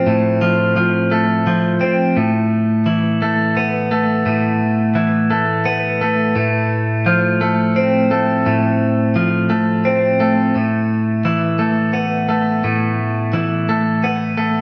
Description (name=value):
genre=rock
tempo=86 BPM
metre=3/4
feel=straight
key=A minor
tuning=A4 = 441 Hz
part: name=twelve-string electric guitar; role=solo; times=0.0-14.6 s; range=A2 to C4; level=-17 LUFS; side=equal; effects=slapback echo
room=wet lush hall reverb, RT60 2.0 s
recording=none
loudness=-17 LUFS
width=mono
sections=0.0-2.2 A section; 2.2-14.6 B section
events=none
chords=0.0 F/A; 2.2 Asus2; 6.4 F/A; 10.5 Asus2